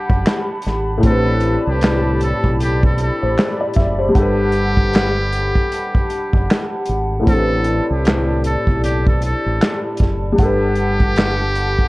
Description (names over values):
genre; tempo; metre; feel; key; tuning
lo-fi hip hop; 77 BPM; 4/4; swing 60% on 16ths; A dorian; A4 = 443 Hz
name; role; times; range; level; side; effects
trumpet with metal mute; melody; 0.0-11.9 s; G4 to A4; -24 LUFS; equal; low-pass filter
felt-muted upright piano; accompaniment; 0.0-11.9 s; A2 to F#5; -20 LUFS; left 1 dB; cassette tape, low-pass filter
hollow soft pad; sustained chords; 0.0-11.9 s; G4 to B5; -24 LUFS; equal; chorus, low-pass filter
deep dub fingered electric bass; bass; 0.1-11.8 s; F#1 to C2; -20 LUFS; equal; none
warm soul drum kit; drums; 0.1-11.9 s; handclaps, hi-hat, kick drum, snare drum; -17 LUFS; equal; none
room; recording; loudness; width
light reverb; worn, warbling old tape, cassette tape, warbly pitch drift; -14 LUFS; side -21 dB against mid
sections
0.0-11.9 A section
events
none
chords
0.0 Gmaj9; 1.0 Am11; 4.2 Gmaj9; 7.3 Am11; 10.4 Gmaj9